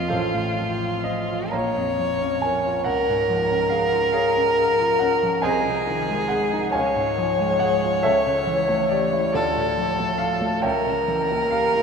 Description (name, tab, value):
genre	classical, romantic duo for violin and grand piano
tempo	46 BPM (dotted quarters)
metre	6/8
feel	rubato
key	unclear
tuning	A4 = 441 Hz
part	clear violin	melody	0.0-11.8 s	F4 to Db5	-21 LUFS	left 1 dB	none
part	clear grand piano	accompaniment	0.0-11.8 s	A1 to Bb5	-23 LUFS	right 1 dB	none
room	wet huge ambient reverb, RT60 7.1 s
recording	in a vast, echoing space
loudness	-19 LUFS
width	side -6 dB against mid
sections	0.0-11.8 A section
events	none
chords	0.1 F/A; 1.5 Bbm; 2.9 Db; 5.4 Ab/C; 6.7 Db; 8.0 A7/C#; 9.3 Dm; 10.6 C#dim7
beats	| 0.12 1.54 | 2.87 4.14 | 5.43 6.73 | 8.04 9.34 | 10.64